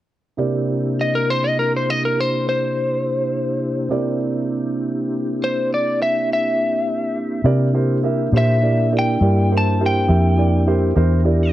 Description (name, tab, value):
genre	slow blues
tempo	68 BPM (dotted quarters)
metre	12/8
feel	straight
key	C mixolydian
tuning	A4 = 440 Hz
part	dark grand piano	accompaniment	0.4-11.5 s	C3 to E5	-24 LUFS	right 4 dB	none
part	mellow tonewheel organ	sustained chords	0.4-11.5 s	C3 to Bb4	-23 LUFS	left 1 dB	slow rotary speaker, chorus vibrato
part	lightly driven lead guitar	melody	1.0-11.5 s	Bb4 to A5	-21 LUFS	left 1 dB	none
part	vintage muted fingered electric bass	bass	7.4-11.5 s	E2 to C3	-17 LUFS	equal	none
room	digital ambience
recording	dry, close 1970s-style studio recording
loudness	-16 LUFS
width	side -14 dB against mid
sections	0.4-7.5 A section; 7.5-11.5 B section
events	none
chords	0.4 C7; 7.5 C9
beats	| 0.38 1.26 2.15 3.04 | 3.92 4.81 5.69 6.57 | 7.46 8.34 9.22 10.10 | 10.98